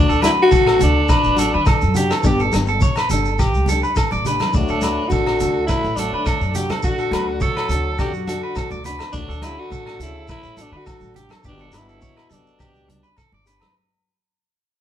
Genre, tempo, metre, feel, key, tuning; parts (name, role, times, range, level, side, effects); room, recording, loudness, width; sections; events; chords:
highlife guitar band; 104 BPM; 4/4; straight; D major; A4 = 440 Hz
raspy alto saxophone; melody; 0.0-13.2 s; D4 to A4; -21 LUFS; left 2 dB
fingerpicked old ladder-braced acoustic guitar; accompaniment; 0.0-13.7 s; A3 to G4; -28 LUFS; left 4 dB
upright bass; bass; 0.0-13.6 s; G1 to D3; -23 LUFS; equal
electric guitar at the edge of break-up; arpeggios; 0.1-13.7 s; F#4 to D5; -23 LUFS; right 3 dB
shekere; percussion; 0.1-13.6 s; -29 LUFS; left 1 dB
vintage drum kit; drums; 0.2-13.7 s; hi-hat, kick drum, rim click; -22 LUFS; equal
agogo bells; percussion; 0.2-13.7 s; -30 LUFS; left 4 dB
congas; percussion; 0.2-13.7 s; -29 LUFS; right 2 dB
clear trombone; second line; 4.5-13.2 s; A2 to F#3; -31 LUFS; left 2 dB
moderate stone room reverb, RT60 1.2 s; band playing live in one room; -16 LUFS; side -10 dB against mid
0.0-13.8 A section
fade-out 0.0-13.8
0.0 D; 2.2 G; 4.5 D; 11.4 G